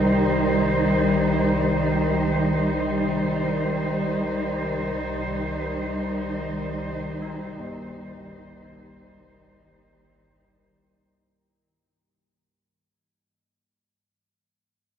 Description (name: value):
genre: dark ambient drone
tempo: free time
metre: none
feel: none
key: C minor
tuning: A4 = 442 Hz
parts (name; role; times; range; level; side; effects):
- warm chamber cello section; sustained chords; 0.0-11.1 s; G3 to C5; -24 LUFS; equal; shimmer reverb
- organ-like drone; drone; 0.0-11.2 s; C2 to Eb3; -25 LUFS; equal; ensemble chorus, built-in reverb
- old church bells; arpeggios; 7.2-13.3 s; G3 to Eb4; -42 LUFS; left 1 dB; none
room: wet plate reverb, RT60 2.9 s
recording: dreamy mix soaked in reverb, faint mains hum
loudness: -22 LUFS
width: side -8 dB against mid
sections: 0.0-11.1 A section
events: fade-out 1.0-11.1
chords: 0.0 Cm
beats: free time